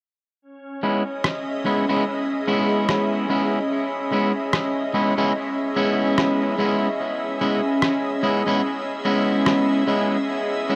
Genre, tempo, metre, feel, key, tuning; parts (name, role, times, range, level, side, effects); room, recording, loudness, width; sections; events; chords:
ambient dub; 73 BPM; 4/4; swing 58% on 16ths; C# minor; A4 = 438 Hz
soft additive organ-like pad; sustained chords; 0.4-10.8 s; C#4 to E5; -26 LUFS; equal; ensemble chorus, built-in reverb
electric guitar at the edge of break-up; stabs; 0.8-10.8 s; G#3 to E4; -24 LUFS; equal; low-pass filter, dub echo
electronic rim click; drums; 1.2-9.7 s; -26 LUFS; equal; studio reverb
wet huge ambient reverb, RT60 7.1 s; -22 LUFS; mono
0.4-10.8 A section
0.4 C#m7